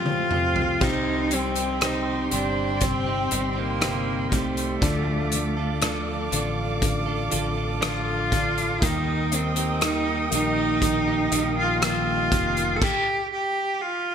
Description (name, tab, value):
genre	pop ballad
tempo	60 BPM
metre	4/4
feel	straight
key	unclear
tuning	A4 = 440 Hz
part	clear cello	melody	0.0-14.1 s	A3 to A4	-26 LUFS	right 1 dB	none
part	felt-muted upright piano	accompaniment	0.0-12.8 s	F2 to Bb3	-30 LUFS	left 5 dB	none
part	rich studio string section	sustained chords	0.0-12.8 s	A2 to Eb6	-31 LUFS	right 2 dB	none
part	direct-recorded clean electric guitar	arpeggios	0.0-12.8 s	C3 to A4	-32 LUFS	right 7 dB	ping-pong delay
part	loose indie drum kit	drums	0.1-13.0 s	crash cymbal, hi-hat, kick drum, rim click, toms	-26 LUFS	equal	gated reverb
part	fretless electric bass	bass	0.8-12.8 s	F1 to Eb2	-30 LUFS	equal	analog chorus
room	light reverb, studio reverb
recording	bright 1980s-style digital production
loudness	-21 LUFS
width	side -8 dB against mid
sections	0.8-14.1 A section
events	drum fill 0.0-0.8; stop 12.8-14.1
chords	0.0 Fadd9; 0.8 Cm; 4.8 Dm; 8.8 Eb; 12.8 N.C.